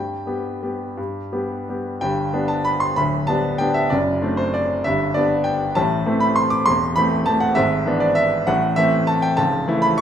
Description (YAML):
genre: classical, piano waltz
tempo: 161-208 BPM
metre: 3/4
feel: rubato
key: G major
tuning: A4 = 440 Hz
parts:
  - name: bright grand piano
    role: solo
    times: 0.0-10.0 s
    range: C#1 to D6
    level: -18 LUFS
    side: equal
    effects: none
room: moderate recital hall reverb, RT60 1.7 s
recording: minimal, uncompressed stereo recording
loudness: -18 LUFS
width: side -9 dB against mid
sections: 0.0-2.0 A section; 2.0-10.0 B section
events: none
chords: 0.0 G; 3.9 D7/F#; 4.8 G; 5.8 Am; 7.6 E7/G#; 8.5 Am; 9.4 A/C#